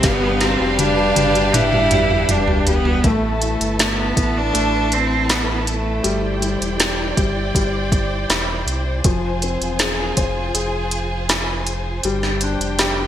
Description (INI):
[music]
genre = pop ballad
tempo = 80 BPM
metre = 4/4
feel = straight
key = unclear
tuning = A4 = 440 Hz
[part]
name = rich cello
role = melody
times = 0.0-6.4 s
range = A3 to E4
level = -20 LUFS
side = right 2 dB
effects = none
[part]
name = warm studio violin section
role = second line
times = 0.0-3.0 s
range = D4 to F5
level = -24 LUFS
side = right 1 dB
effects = none
[part]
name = warm baby grand piano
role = accompaniment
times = 0.0-13.1 s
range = F3 to C5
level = -24 LUFS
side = left 4 dB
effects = none
[part]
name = warm studio string section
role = sustained chords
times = 0.0-13.1 s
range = D4 to A5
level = -26 LUFS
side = equal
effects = none
[part]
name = sub bass with octave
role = bass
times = 0.0-13.1 s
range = E1 to C2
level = -24 LUFS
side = equal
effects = none
[part]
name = smooth R&B drum kit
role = drums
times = 0.0-13.0 s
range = hi-hat, kick drum, snare drum, toms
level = -20 LUFS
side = equal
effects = gated reverb
[sound]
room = moderate lush hall reverb, RT60 2.7 s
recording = bright 1980s-style digital production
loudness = -16 LUFS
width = side -10 dB against mid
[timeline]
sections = 0.0-3.0 A section; 3.0-13.1 B section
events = drum fill 0.0-3.0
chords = 0.0 G; 3.0 Asus2; 6.0 Cadd9; 9.0 Fm; 12.0 Gsus4